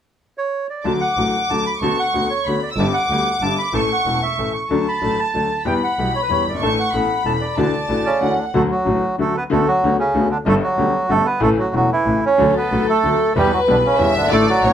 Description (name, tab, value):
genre	tango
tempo	188 BPM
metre	3/4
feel	rubato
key	D major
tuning	A4 = 440 Hz
part	bandoneon	melody	0.4-14.7 s	C#3 to C#6	-19 LUFS	right 2 dB	none
part	bright concert grand piano	accompaniment	0.8-14.7 s	E1 to A4	-21 LUFS	left 4 dB	none
part	warm studio violin section	second line	0.9-8.5, 12.4-14.7 s	A4 to E6	-22 LUFS	left 1 dB	none
part	clear double bass	bass	0.9-14.7 s	E1 to E2	-24 LUFS	right 2 dB	none
room	moderate studio ambience, RT60 0.5 s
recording	band playing live in one room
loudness	-16 LUFS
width	side -9 dB against mid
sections	0.9-8.5 A section; 8.5-14.7 A section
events	none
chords	0.0 N.C.; 0.9 D; 1.8 Bm7/D; 2.8 G; 3.7 A; 4.7 D; 5.7 Em; 6.6 Asus4; 6.9 Aadd9; 7.6 Dadd9; 8.5 D; 9.5 Bm7/D; 10.5 G; 11.4 A; 12.4 D; 13.4 Em; 14.3 Asus4